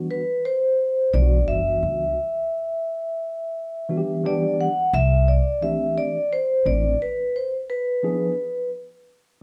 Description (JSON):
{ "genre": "hip hop, jazz-hop", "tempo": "87 BPM", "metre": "4/4", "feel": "swing 65% on 16ths", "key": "unclear", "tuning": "A4 = 440 Hz", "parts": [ { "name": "mellow tine electric piano", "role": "accompaniment", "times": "0.0-8.3 s", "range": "E3 to G#4", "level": "-29 LUFS", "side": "equal", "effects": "none" }, { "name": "vibraphone with medium mallets", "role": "melody", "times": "0.1-8.7 s", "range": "B4 to F#5", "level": "-25 LUFS", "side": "equal", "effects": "none" }, { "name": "upright bass", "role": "bass", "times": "1.1-6.9 s", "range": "F#1 to C#2", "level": "-23 LUFS", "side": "equal", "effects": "none" } ], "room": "light reverb", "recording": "band playing live in one room", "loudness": "-23 LUFS", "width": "mono", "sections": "0.0-4.9 A section; 4.9-9.4 B section", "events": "break 2.2-4.9, 7.7-9.4", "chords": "0.0 Em9; 2.2 Dsus24; 4.2 Em7; 4.9 C69; 7.7 E7b9" }